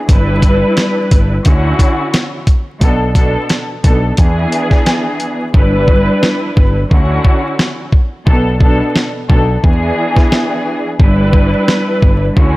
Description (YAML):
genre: hip hop, boom-bap hip-hop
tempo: 88 BPM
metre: 4/4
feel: swing 54% on 16ths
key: unclear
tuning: A4 = 441 Hz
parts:
  - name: muted studio string section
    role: accompaniment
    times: 0.1-12.6 s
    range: B2 to B4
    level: -15 LUFS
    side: equal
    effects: cassette tape, high-pass filter, low-pass filter
  - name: fretless electric bass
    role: bass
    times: 0.1-12.6 s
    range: G1 to E2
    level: -15 LUFS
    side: equal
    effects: none
  - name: dusty soul sampler-style drum kit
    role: drums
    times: 0.1-12.5 s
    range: hi-hat, kick drum, snare drum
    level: -11 LUFS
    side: equal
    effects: none
room: light reverb, digital ambience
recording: vinyl crackle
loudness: -10 LUFS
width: side -19 dB against mid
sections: 0.0-12.6 A section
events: hi-hats muted 5.5-12.6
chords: 0.1 G6; 1.4 Dmaj9; 2.8 Bm7; 4.2 E7; 5.5 G6; 6.9 Dmaj9; 8.3 Bm7; 9.6 E7; 11.0 G6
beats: | 0.09 0.77 1.45 2.13 | 2.81 3.49 4.18 4.86 | 5.54 6.22 6.90 7.58 | 8.27 8.95 9.63 10.31 | 10.99 11.68 12.36